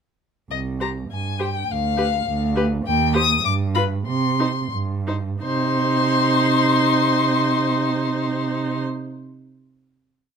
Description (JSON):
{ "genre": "quick classical-period movement for string quartet", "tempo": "86-103 BPM", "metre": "2/4", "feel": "rubato", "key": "C minor", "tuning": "A4 = 440 Hz", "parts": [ { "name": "rich violin", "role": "melody", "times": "0.5-8.8 s", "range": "Eb5 to Eb6", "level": "-23 LUFS", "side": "left 5 dB", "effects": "none" }, { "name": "dark cello", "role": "bass", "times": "0.5-8.8 s", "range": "C2 to C3", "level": "-22 LUFS", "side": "right 4 dB", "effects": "none" }, { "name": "rich violin", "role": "second line", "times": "0.8-8.8 s", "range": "B4 to C5", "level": "-27 LUFS", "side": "left 6 dB", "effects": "none" }, { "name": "rich viola", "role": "accompaniment", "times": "0.8-8.8 s", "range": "Eb4 to G4", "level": "-24 LUFS", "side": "right 2 dB", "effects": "none" } ], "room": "light reverb", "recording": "close, detailed microphones", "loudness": "-18 LUFS", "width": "side -6 dB against mid", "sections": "0.5-5.4 A section; 5.4-8.0 final chord", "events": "slowing down 2.3-5.4", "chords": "0.5 C5; 1.7 G7(no3)/D; 2.9 Cm/Eb (rootless); 3.5 G7; 4.1 C5; 5.4 Cm" }